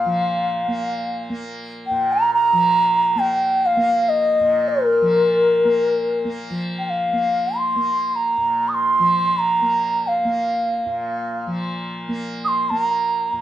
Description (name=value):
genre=indian classical, Hindustani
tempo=free time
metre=none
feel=none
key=Bb raga durga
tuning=A4 = 440 Hz
part: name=mellow bansuri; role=melody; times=0.0-13.4 s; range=Bb4 to Eb6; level=-17 LUFS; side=equal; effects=plate reverb
part: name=tanpura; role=drone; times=0.0-13.4 s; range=Bb2 to Bb3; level=-27 LUFS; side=equal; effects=none
room=moderate small room reverb, RT60 0.5 s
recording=dark, warm production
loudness=-17 LUFS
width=side -12 dB against mid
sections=0.0-6.5 A section; 6.5-13.4 A section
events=none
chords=none